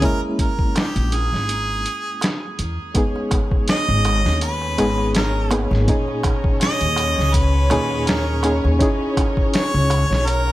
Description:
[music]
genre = trip hop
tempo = 82 BPM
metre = 4/4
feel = swing 54% on 16ths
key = G# minor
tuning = A4 = 440 Hz
[part]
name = warm harmonica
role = melody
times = 0.0-10.5 s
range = G4 to D#5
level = -24 LUFS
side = right 1 dB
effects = tape echo
[part]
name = barky reed electric piano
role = accompaniment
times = 0.0-10.5 s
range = A#2 to G#4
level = -24 LUFS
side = equal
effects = overdrive, fast tremolo, tape echo
[part]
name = boom bap sampler-style drum kit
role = drums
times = 0.0-10.5 s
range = hi-hat, kick drum, snare drum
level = -21 LUFS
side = equal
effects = studio reverb
[part]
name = darbuka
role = percussion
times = 0.8-10.5 s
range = none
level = -33 LUFS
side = right 4 dB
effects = none
[part]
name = upright bass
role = bass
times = 1.0-10.5 s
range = G#1 to E2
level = -20 LUFS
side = equal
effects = none
[part]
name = muted chamber violin section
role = sustained chords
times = 2.9-10.5 s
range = C#4 to C#5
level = -27 LUFS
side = left 2 dB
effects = none
[sound]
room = small room ambience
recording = none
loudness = -17 LUFS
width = side -15 dB against mid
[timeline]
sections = 0.0-3.0 A section; 3.0-10.5 B section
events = break 1.5-3.0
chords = 0.0 A#m7b5; 3.0 G#madd9; 5.9 D#7sus4; 8.8 C#madd9

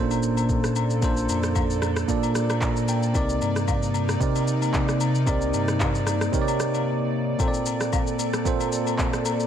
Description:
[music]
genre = amapiano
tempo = 113 BPM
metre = 4/4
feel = swing 55% on 16ths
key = Bb major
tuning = A4 = 440 Hz
[part]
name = bell-like tine electric piano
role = accompaniment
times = 0.0-9.5 s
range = Bb2 to Bb5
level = -26 LUFS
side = moving between equal and right 7 dB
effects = auto-pan
[part]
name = airy breathy pad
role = sustained chords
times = 0.0-9.5 s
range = C3 to D5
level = -30 LUFS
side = left 3 dB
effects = chorus, sidechain pumping
[part]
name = sub bass with octave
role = bass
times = 0.0-7.4 s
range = Bb1 to C3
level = -27 LUFS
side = equal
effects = none
[part]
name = impact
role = sound effects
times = 0.0-1.0 s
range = none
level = -44 LUFS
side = left 2 dB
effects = none
[part]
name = smooth R&B drum kit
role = drums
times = 0.1-9.5 s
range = handclaps, kick drum, rim click, shaker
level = -27 LUFS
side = left 1 dB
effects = none
[part]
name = agogo bells and woodblock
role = percussion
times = 0.1-9.4 s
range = none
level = -33 LUFS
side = left 11 dB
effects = none
[sound]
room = light reverb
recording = none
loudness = -21 LUFS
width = side -9 dB against mid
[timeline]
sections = 0.0-9.5 A section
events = impact 0.0-1.0; tine electric piano fill 2.4-3.1; break 6.9-7.4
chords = 0.0 Bbmaj9; 3.1 Cm9; 7.4 Bbmaj9

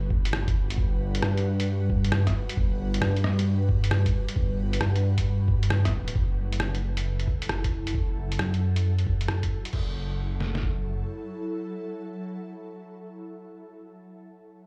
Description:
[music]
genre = future garage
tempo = 134 BPM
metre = 4/4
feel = swing 66% on 16ths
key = F# phrygian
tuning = A4 = 439 Hz
[part]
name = ethereal airy pad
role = sustained chords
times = 0.0-14.1 s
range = F#3 to B4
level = -38 LUFS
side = equal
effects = ensemble chorus, built-in reverb, phaser, sidechain pumping
[part]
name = dark detuned saw bass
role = bass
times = 0.0-11.0 s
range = D1 to G2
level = -28 LUFS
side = equal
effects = sidechain pumping
[part]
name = lo-fi sampler-style drum kit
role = drums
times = 0.1-10.8 s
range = kick drum, snare drum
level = -30 LUFS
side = equal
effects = none
[part]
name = lo-fi sampler-style drum kit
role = drums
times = 0.3-9.8 s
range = crash cymbal, hi-hat, rim click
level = -34 LUFS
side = equal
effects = none
[sound]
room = digital ambience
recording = played on a big sound system in a bare room, large studio reverb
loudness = -27 LUFS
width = mono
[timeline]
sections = 0.0-6.2 A section; 6.2-9.7 B section; 9.7-13.3 C section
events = filter sweep on detuned saw bass 6.2-9.7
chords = 0.0 Gmaj7; 6.2 F#m7

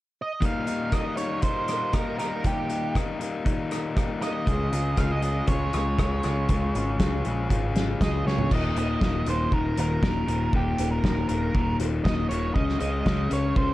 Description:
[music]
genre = indie rock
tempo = 119 BPM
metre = 4/4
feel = straight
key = Eb mixolydian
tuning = A4 = 440 Hz
[part]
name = octave-fuzz lead guitar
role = melody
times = 0.2-13.7 s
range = G4 to F5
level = -31 LUFS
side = right 3 dB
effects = distortion
[part]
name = overdriven electric guitar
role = riff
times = 0.4-13.7 s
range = Eb2 to Ab4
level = -28 LUFS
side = left 3 dB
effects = none
[part]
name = loose indie drum kit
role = drums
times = 0.4-13.7 s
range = crash cymbal, hi-hat, kick drum, rim click, snare drum, toms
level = -27 LUFS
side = equal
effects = none
[part]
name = growling picked electric bass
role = bass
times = 4.5-13.7 s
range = Eb1 to Db2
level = -28 LUFS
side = equal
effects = overdrive
[sound]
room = light reverb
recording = dark, warm production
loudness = -23 LUFS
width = side -16 dB against mid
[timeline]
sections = 0.4-8.5 A section; 8.5-13.7 B section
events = drum fill 8.3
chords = 0.4 Eb; 4.5 Db; 8.5 Eb5; 12.6 Db5

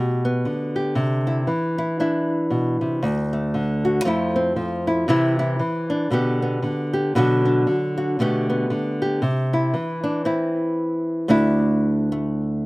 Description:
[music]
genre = folk, solo fingerstyle acoustic guitar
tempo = 116 BPM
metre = 4/4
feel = swing 59% on 8ths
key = unclear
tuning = A4 = 439 Hz
[part]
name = nylon-string guitar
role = solo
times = 0.0-12.7 s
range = D2 to G4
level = -19 LUFS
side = equal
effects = none
[sound]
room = little or no reverb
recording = recorded outdoors, with no room sound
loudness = -19 LUFS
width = side -22 dB against mid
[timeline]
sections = 0.0-11.3 A section; 11.3-12.7 B section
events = none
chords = 0.0 G/B; 1.0 Cadd9; 3.0 D; 4.1 Fmaj7; 5.1 C; 6.1 G/B; 7.2 Bm; 8.2 Gadd9/B; 9.2 C; 11.3 Dsus2

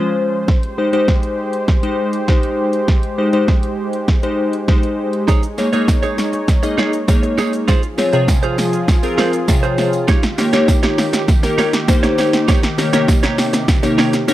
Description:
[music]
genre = dance-pop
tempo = 100 BPM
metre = 4/4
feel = straight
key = Ab major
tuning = A4 = 438 Hz
[part]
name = glassy digital keys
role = accompaniment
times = 0.0-14.3 s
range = C3 to Eb5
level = -18 LUFS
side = left 2 dB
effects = chorus, sidechain pumping
[part]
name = warm analog pad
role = sustained chords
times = 0.0-14.3 s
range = C3 to Db5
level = -22 LUFS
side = right 1 dB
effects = chorus, sidechain pumping
[part]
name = punchy analog drum machine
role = drums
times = 0.5-14.3 s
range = hi-hat, kick drum, shaker, snare drum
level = -15 LUFS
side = right 1 dB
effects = none
[part]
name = direct-recorded clean electric guitar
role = riff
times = 5.3-14.3 s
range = Eb4 to Db5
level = -22 LUFS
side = right 6 dB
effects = lush chorus
[part]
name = tambourine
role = percussion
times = 5.3-14.3 s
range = none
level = -35 LUFS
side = right 6 dB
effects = none
[sound]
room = digital ambience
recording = dry, close 1970s-style studio recording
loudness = -13 LUFS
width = side -14 dB against mid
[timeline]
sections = 0.0-14.3 A section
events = build-up 0.0-14.3; drum fill 0.0-14.3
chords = 0.5 Abmaj7; 5.3 Eb7sus4; 7.7 Dbmaj7; 10.1 Eb7

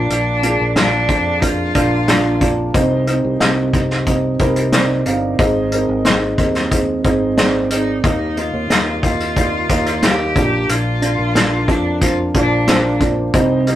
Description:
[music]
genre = piano-driven pop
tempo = 91 BPM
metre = 4/4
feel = straight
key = unclear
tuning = A4 = 440 Hz
[part]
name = bright cello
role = melody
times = 0.0-2.4, 7.7-13.0 s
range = D4 to G4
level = -20 LUFS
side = left 1 dB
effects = none
[part]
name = felt-muted upright piano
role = accompaniment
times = 0.0-13.8 s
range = Ab2 to F5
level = -18 LUFS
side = right 1 dB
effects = none
[part]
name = fingered electric bass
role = bass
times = 0.0-13.8 s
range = G1 to F2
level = -22 LUFS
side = equal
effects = none
[part]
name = unplugged drum kit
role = drums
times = 0.1-13.8 s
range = hi-hat, kick drum, snare drum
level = -17 LUFS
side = equal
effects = none
[sound]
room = moderate studio reverb, RT60 0.5 s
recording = rough rehearsal-room recording, tube saturation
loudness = -14 LUFS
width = side -12 dB against mid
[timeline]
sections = 0.0-13.8 A section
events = none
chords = 0.0 Bb; 2.7 Cm; 5.4 Ab; 8.0 Eb; 10.4 Bb

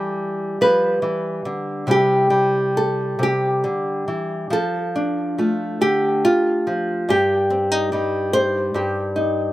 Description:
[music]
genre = folk, solo fingerstyle acoustic guitar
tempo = 47 BPM (dotted quarters)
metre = 6/8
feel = rubato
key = unclear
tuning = A4 = 440 Hz
[part]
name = nylon-string guitar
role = solo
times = 0.0-9.5 s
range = G2 to C5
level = -18 LUFS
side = equal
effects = slapback echo
[sound]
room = light reverb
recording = recorded outdoors, with no room sound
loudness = -18 LUFS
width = side -15 dB against mid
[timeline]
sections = 0.0-4.5 A section; 4.5-9.5 B section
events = none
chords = 0.0 Em7; 1.9 C; 4.5 F6; 7.1 Cm/G

